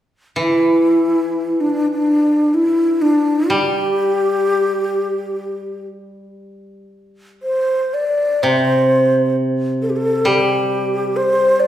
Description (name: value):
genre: chinese traditional, Chinese chamber ensemble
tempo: free time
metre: none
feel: none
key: G zhi mode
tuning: A4 = 441 Hz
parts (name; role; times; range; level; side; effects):
- breathy xiao; melody; 0.4-11.7 s; D4 to D5; -16 LUFS; equal; none
- steel-string zither; accompaniment; 0.4-11.7 s; C3 to G3; -21 LUFS; equal; none
room: wet recital hall reverb, RT60 1.3 s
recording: heard from further back in the room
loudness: -14 LUFS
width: side -11 dB against mid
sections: 0.0-8.5 A section; 8.5-11.7 B section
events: none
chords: none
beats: free time